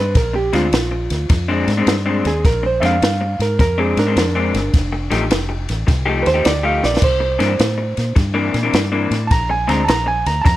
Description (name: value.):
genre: electric blues shuffle.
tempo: 105 BPM.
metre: 4/4.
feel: swing 66% on 8ths.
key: unclear.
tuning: A4 = 441 Hz.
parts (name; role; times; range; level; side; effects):
bright reed electric piano; accompaniment; 0.0-10.6 s; D4 to Bb5; -20 LUFS; right 3 dB; none.
fingered electric bass; bass; 0.0-10.6 s; F1 to Bb2; -20 LUFS; equal; none.
compact cocktail drum kit; drums; 0.1-10.6 s; crash cymbal, kick drum, ride cymbal, snare drum; -19 LUFS; equal; none.
electric guitar through a small old amp; riff; 0.3-10.5 s; Bb2 to G4; -21 LUFS; left 3 dB; spring reverb.
room: little or no reverb.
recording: none.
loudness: -15 LUFS.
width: side -15 dB against mid.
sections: 0.0-10.6 A section.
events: drum fill 6.7.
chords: 0.0 Bb9; 4.7 F9; 7.0 C9; 9.3 Bb9.